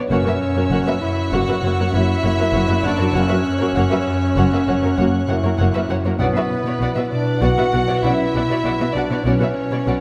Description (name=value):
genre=cinematic, suspense film score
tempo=98 BPM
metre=5/4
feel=straight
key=B harmonic minor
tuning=A4 = 438 Hz
part: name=dark studio violin section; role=second line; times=0.0-9.9 s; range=A#4 to F#5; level=-30 LUFS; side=equal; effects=none
part: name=concert harp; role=riff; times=0.0-10.0 s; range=F#2 to B3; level=-25 LUFS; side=equal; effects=none
part: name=vibraphone with medium mallets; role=texture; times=0.0-10.0 s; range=E4 to E5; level=-35 LUFS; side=equal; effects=none
part: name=warm studio violin section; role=melody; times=0.1-10.0 s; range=B4 to F#5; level=-29 LUFS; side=equal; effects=none
part: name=warm clarinet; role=second line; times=0.1-10.0 s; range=B3 to F#4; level=-25 LUFS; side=equal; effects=none
part: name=warm studio viola section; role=accompaniment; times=0.1-9.9 s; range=A#3 to F#4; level=-28 LUFS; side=equal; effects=none
part: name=dark French horn section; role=sustained chords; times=0.1-9.5 s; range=F#3 to C#4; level=-30 LUFS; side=equal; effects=none
part: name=rich studio cello section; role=bass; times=0.1-9.9 s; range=F#2 to B2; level=-28 LUFS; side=equal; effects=none
part: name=rich studio double bass section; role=bass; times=0.1-9.9 s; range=F#1 to B1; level=-27 LUFS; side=equal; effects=none
part: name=rich studio violin section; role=texture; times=0.1-5.9 s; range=C#6 to F#6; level=-33 LUFS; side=equal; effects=none
part: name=timpani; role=percussion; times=6.2-7.1 s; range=B2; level=-32 LUFS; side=equal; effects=none
room=wet scoring stage reverb, RT60 2.0 s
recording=none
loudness=-19 LUFS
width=mono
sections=0.0-10.0 A section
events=none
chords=0.1 F#; 6.2 Bmadd9